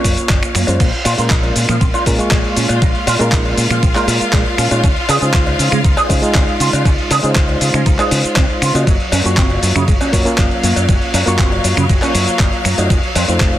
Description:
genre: nu-disco, nu disco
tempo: 119 BPM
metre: 4/4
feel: straight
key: unclear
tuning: A4 = 441 Hz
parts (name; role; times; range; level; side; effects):
- bright reed electric piano; accompaniment; 0.0-13.6 s; Ab3 to Db6; -20 LUFS; equal; medium tremolo, tape echo
- clear studio string section; sustained chords; 0.0-13.6 s; Gb3 to F5; -22 LUFS; left 1 dB; sidechain pumping
- fingered electric bass with an envelope filter; bass; 0.0-13.6 s; F1 to Db3; -18 LUFS; equal; none
- dusty soul sampler-style drum kit; drums; 0.0-13.6 s; crash cymbal, finger snaps, handclaps, hi-hat, ride cymbal, shaker; -19 LUFS; equal; soft clipping on snare
- electronic kick drum; drums; 0.0-13.5 s; none; -15 LUFS; equal; none
- electric guitar with an envelope filter; riff; 0.3-13.5 s; Db3 to Ab4; -22 LUFS; right 4 dB; ensemble chorus, tape echo
- cowbell; percussion; 0.3-13.6 s; none; -26 LUFS; left 3 dB; none
room: digital ambience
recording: dense, heavily limited modern master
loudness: -12 LUFS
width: side -13 dB against mid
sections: 0.0-13.6 A section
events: none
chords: 0.0 Gbmaj7; 0.8 Bbm7; 4.8 Dbmaj9; 8.9 Gbmaj7; 12.9 F7b9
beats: 0.30 | 0.80 1.31 1.81 2.31 | 2.82 3.32 3.83 4.33 | 4.84 5.34 5.84 6.35 | 6.85 7.36 7.86 8.37 | 8.87 9.37 9.88 10.38 | 10.89 11.39 11.89 12.40 | 12.90 13.41

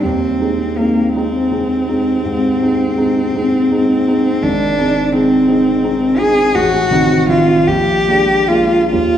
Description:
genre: classical, romantic duo for cello and grand piano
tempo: 46-57 BPM (dotted quarters)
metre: 12/8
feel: rubato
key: unclear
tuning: A4 = 439 Hz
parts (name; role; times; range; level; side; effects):
- rich cello; melody; 0.0-9.2 s; Bb3 to Ab4; -14 LUFS; left 1 dB; none
- warm concert grand piano; accompaniment; 0.0-9.2 s; Ab1 to Eb4; -15 LUFS; right 1 dB; none
room: wet recital hall reverb, RT60 1.7 s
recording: heard from further back in the room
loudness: -12 LUFS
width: side -10 dB against mid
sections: 0.0-9.2 A section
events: none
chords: 0.0 Ab/Eb; 4.4 Ab; 6.6 Adim7; 7.7 Bb7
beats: | 0.03 1.16 2.25 3.34 | 4.43 5.49 6.55 7.68 | 8.92

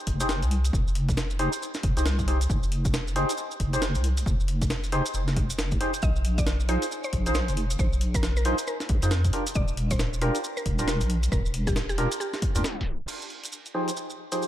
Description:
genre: UK garage, two-step garage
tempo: 136 BPM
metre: 4/4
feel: swing 61% on 16ths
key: F dorian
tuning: A4 = 444 Hz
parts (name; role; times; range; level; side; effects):
- deep soft wobble bass; bass; 0.1-13.0 s; Eb1 to F2; -26 LUFS; equal; chorus
- breakbeat sampler-style drum kit; drums; 0.1-14.4 s; crash cymbal, hi-hat, snare drum; -34 LUFS; equal; none
- electronic kick drum; drums; 0.1-12.8 s; none; -28 LUFS; equal; none
- percussive organ stab; stabs; 0.2-14.4 s; F3 to C5; -31 LUFS; equal; lush chorus, ping-pong delay
- maracas; percussion; 0.2-14.5 s; none; -37 LUFS; right 2 dB; none
- mallet-like synth pluck; melody; 6.0-13.0 s; G4 to Eb5; -35 LUFS; equal; chorus, diffuse ambient delay
room: light reverb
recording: tape stop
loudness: -24 LUFS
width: side -12 dB against mid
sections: 0.0-13.1 A section; 13.1-14.5 B section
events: tape stop 12.6-13.1; filter sweep on synth stab 13.1-14.5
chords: 0.0 Fm9; 6.0 Bb9sus4; 9.3 Ebmaj9; 13.1 Fm9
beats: 0.29 | 0.73 1.17 1.61 2.06 | 2.50 2.94 3.38 3.82 | 4.26 4.70 5.14 5.58 | 6.03 6.47 6.91 7.35 | 7.79 8.23 8.67 9.11 | 9.55 10.00 10.44 10.88 | 11.32 11.76 12.20 12.64 | 13.09 13.53 13.97 14.41

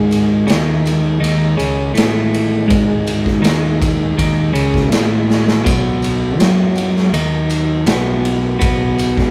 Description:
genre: psychedelic rock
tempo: 81 BPM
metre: 4/4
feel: straight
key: unclear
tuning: A4 = 439 Hz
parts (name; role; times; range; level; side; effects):
- mellow tonewheel organ; sustained chords; 0.0-9.3 s; D#3 to G#4; -29 LUFS; equal; none
- twelve-string electric guitar; riff; 0.0-9.3 s; G#2 to F#3; -17 LUFS; equal; none
- fuzz fingered electric bass; bass; 0.0-9.3 s; G#1 to F#2; -26 LUFS; equal; overdrive
- raw garage drum kit; drums; 0.1-9.3 s; kick drum, ride cymbal, snare drum, splash cymbal; -20 LUFS; equal; none
- tambourine; percussion; 0.1-9.2 s; none; -38 LUFS; equal; none
room: moderate small room reverb, RT60 0.5 s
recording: rough rehearsal-room recording, warm saturation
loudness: -15 LUFS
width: mono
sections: 0.0-9.3 A section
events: drum fill 5.3-5.7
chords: 0.0 G#5; 5.7 B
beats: 0.48 1.22 1.96 | 2.70 3.44 4.17 4.91 | 5.65 6.39 7.13 7.87 | 8.61

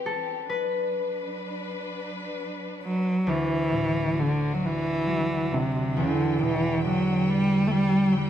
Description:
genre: celtic folk, Celtic slow air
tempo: 45 BPM (dotted quarters)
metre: 6/8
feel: rubato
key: D mixolydian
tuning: A4 = 440 Hz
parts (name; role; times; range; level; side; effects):
- concert harp; accompaniment; 0.0-8.3 s; D2 to B4; -27 LUFS; left 2 dB; none
- warm studio string section; sustained chords; 0.0-8.3 s; E3 to G5; -36 LUFS; left 2 dB; none
- rich cello; melody; 2.8-8.3 s; C3 to A3; -24 LUFS; right 1 dB; none
room: light reverb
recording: close, detailed microphones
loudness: -23 LUFS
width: side -10 dB against mid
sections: 0.0-3.3 A section; 3.3-8.3 B section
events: harp solo 0.0-3.3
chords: 0.5 D6; 3.3 Dadd9; 6.0 Em7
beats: | 0.47 1.85 | 3.26 4.62 | 5.96 7.29

